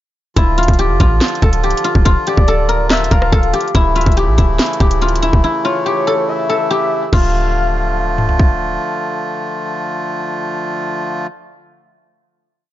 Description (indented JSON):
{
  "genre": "hip hop, trap",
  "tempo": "142 BPM",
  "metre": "4/4",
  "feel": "half-time",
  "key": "D harmonic minor",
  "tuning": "A4 = 440 Hz",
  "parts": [
    { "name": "guzheng", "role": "melody", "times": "0.4-9.7 s", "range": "E4 to Bb4", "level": "-18 LUFS", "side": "left 1 dB", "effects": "none" },
    { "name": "accordion", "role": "sustained chords", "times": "0.4-11.3 s", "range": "C#3 to F4", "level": "-21 LUFS", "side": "equal", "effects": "none" },
    { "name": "clean 808-style bass", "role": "bass", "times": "0.4-8.8 s", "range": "C#1 to A1", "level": "-16 LUFS", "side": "equal", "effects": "none" },
    { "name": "trap drum kit", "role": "drums", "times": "0.4-8.5 s", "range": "crash cymbal, handclaps, hi-hat, kick drum, rim click, snare drum, toms", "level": "-14 LUFS", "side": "equal", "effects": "none" },
    { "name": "gliding portamento lead", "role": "second line", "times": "0.6-8.4 s", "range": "C#5 to F5", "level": "-21 LUFS", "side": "left 4 dB", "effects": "chorus, tape echo" }
  ],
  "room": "little or no reverb",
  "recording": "dark, warm production, nothing above 7.5 kHz",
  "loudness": "-13 LUFS",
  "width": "side -14 dB against mid",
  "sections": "0.4-7.1 hook; 7.1-10.5 final chord",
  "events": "break 5.4-7.1",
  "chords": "0.4 Dm; 3.7 A/D; 7.1 Dm"
}